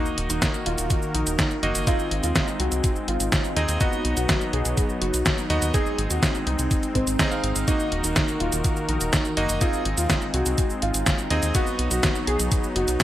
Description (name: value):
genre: italo disco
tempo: 124 BPM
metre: 4/4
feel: straight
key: unclear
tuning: A4 = 439 Hz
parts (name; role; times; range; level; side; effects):
- dark concert grand piano; melody; 0.0-13.0 s; C4 to Ab4; -29 LUFS; equal; analog chorus, digital delay
- warm analog pad; sustained chords; 0.0-13.0 s; Eb3 to Bb4; -30 LUFS; left 1 dB; chorus, vintage 12-bit sampler grit
- bright electric grand piano; stabs; 0.0-13.0 s; Bb3 to F5; -30 LUFS; right 1 dB; low-pass filter
- detuned 8-bit digital drum machine; drums; 0.1-13.0 s; cabasa, hi-hat, snare drum; -26 LUFS; equal; none
- round analog bass; bass; 0.2-13.0 s; Eb1 to Eb2; -26 LUFS; equal; none
- electronic kick drum; drums; 0.4-13.0 s; none; -25 LUFS; equal; overdrive
room: light reverb, digital ambience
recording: bright 1980s-style digital production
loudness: -21 LUFS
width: side -13 dB against mid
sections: 0.0-13.0 A section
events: none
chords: 0.0 Ebm; 1.9 Ab; 3.8 B; 5.7 Ab; 7.7 Ebm; 9.6 Ab; 11.5 B